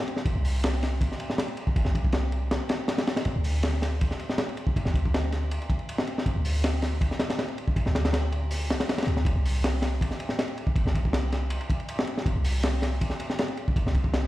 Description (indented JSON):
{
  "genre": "drum and bass, jungle",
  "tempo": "160 BPM",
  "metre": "4/4",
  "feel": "straight",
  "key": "unclear",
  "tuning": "A4 = 440 Hz",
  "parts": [
    { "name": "crunchy breakbeat drum kit", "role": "drums", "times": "0.1-14.2 s", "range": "hi-hat, kick drum, ride cymbal, snare drum", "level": "-26 LUFS", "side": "equal", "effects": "none" },
    { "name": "warm 808-style bass", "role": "bass", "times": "0.3-14.3 s", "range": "G1 to D2", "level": "-26 LUFS", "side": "equal", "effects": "none" }
  ],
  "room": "light reverb",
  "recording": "played on a big sound system in a bare room, stone room reverb",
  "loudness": "-24 LUFS",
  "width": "side -16 dB against mid",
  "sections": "0.0-14.3 A section",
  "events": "none",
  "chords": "none",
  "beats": "| 0.26 0.64 1.01 1.39 | 1.76 2.13 2.51 2.88 | 3.26 3.63 4.01 4.38 | 4.76 5.13 5.51 5.88 | 6.26 6.63 7.01 7.38 | 7.76 8.13 8.51 8.88 | 9.26 9.63 10.01 10.38 | 10.76 11.13 11.51 11.88 | 12.26 12.63 13.01 13.38 | 13.76 14.13"
}